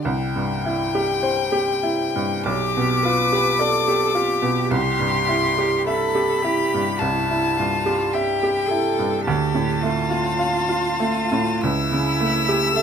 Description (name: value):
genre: classical, slow romantic movement for piano trio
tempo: 46-54 BPM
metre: 4/4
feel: rubato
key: C major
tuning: A4 = 445 Hz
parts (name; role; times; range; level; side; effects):
- clear violin; melody; 0.0-12.8 s; G5 to E6; -23 LUFS; left 7 dB; none
- bright baby grand piano; accompaniment; 0.0-12.8 s; B1 to F5; -21 LUFS; right 1 dB; none
- clear cello; second line; 2.4-12.8 s; E4 to B4; -25 LUFS; right 5 dB; none
room: light reverb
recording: none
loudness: -18 LUFS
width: side -7 dB against mid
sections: 0.0-12.8 A section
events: none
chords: 0.0 C; 2.5 G7/B; 4.7 C; 9.3 Dm; 11.6 A7/C#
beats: | 0.04 1.21 2.45 3.60 | 4.72 5.87 7.01 8.13 | 9.26 10.38 11.61 12.75